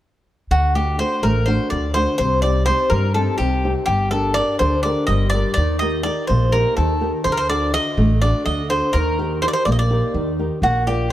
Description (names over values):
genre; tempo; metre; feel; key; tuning
greek folk, Greek bouzouki band; 249 BPM (eighths); 7/8; straight; D phrygian dominant; A4 = 439 Hz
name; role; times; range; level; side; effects
Greek bouzouki; melody; 0.5-11.1 s; F#4 to Eb5; -20 LUFS; equal; none
flamenco guitar; accompaniment; 0.5-11.1 s; C3 to D5; -23 LUFS; left 1 dB; none
upright bass; bass; 0.5-11.1 s; G1 to G2; -20 LUFS; equal; none
room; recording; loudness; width
moderate plate reverb, RT60 2.7 s; heard from further back in the room; -16 LUFS; side -13 dB against mid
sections
0.5-11.1 A section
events
none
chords
0.5 D; 2.2 Cm; 3.9 Gm; 5.6 Eb; 7.3 D; 8.9 Eb